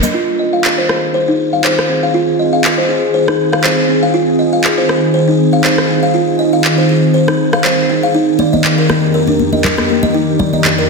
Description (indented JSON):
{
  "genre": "afro house",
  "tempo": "120 BPM",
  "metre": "4/4",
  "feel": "swing 55% on 16ths",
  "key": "F minor",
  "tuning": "A4 = 440 Hz",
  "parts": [
    { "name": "buzzing kalimba", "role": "arpeggios", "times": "0.0-10.8 s", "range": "Bb3 to F5", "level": "-15 LUFS", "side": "equal", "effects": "low-pass filter, dub echo" },
    { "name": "electronic cabasa, handclaps and rim click", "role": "drums", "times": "0.0-10.8 s", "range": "none", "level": "-17 LUFS", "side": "equal", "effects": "studio reverb" },
    { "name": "congas", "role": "percussion", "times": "0.0-0.1, 8.4-10.8 s", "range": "none", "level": "-20 LUFS", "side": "left 4 dB", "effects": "none" },
    { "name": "ethereal airy pad", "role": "sustained chords", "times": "0.9-10.9 s", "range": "F2 to Bb4", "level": "-14 LUFS", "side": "equal", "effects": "ensemble chorus, built-in reverb" }
  ],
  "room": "wet lush hall reverb, RT60 1.6 s",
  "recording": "dense, heavily limited modern master",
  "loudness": "-10 LUFS",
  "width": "side -3 dB against mid",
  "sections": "0.1-10.9 A section",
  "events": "filter sweep on kalimba 0.1-10.9",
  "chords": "0.1 Fm7; 8.1 Eb/F",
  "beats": "| 0.14 0.64 1.14 1.64 | 2.14 2.64 3.14 3.64 | 4.14 4.64 5.14 5.64 | 6.14 6.64 7.14 7.64 | 8.14 8.64 9.14 9.64 | 10.14 10.64"
}